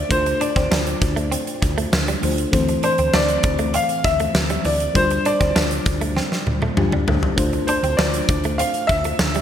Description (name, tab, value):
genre	1980s-style pop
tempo	99 BPM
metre	4/4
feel	straight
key	unclear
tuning	A4 = 441 Hz
part	warm concert grand piano	melody	0.0-9.4 s	C5 to F5	-22 LUFS	left 1 dB	lush chorus, digital delay
part	mellow FM electric piano	accompaniment	0.0-9.4 s	E3 to C5	-25 LUFS	left 2 dB	chorus
part	woody fretless electric bass	bass	0.0-9.4 s	D2	-24 LUFS	equal	none
part	huge arena drum kit	drums	0.1-9.4 s	hi-hat, kick drum, snare drum, tambourine, toms	-22 LUFS	equal	none
part	direct-recorded clean electric guitar	riff	0.3-9.4 s	E3 to D4	-28 LUFS	right 5 dB	wide subtle chorus
room	moderate plate reverb, RT60 1.9 s, small room ambience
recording	bright 1980s-style digital production, faint mains hum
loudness	-17 LUFS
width	side -9 dB against mid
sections	0.0-9.4 A section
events	drum fill 6.2-7.4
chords	0.0 Dm7; 2.5 Am/D; 5.0 G7sus4/D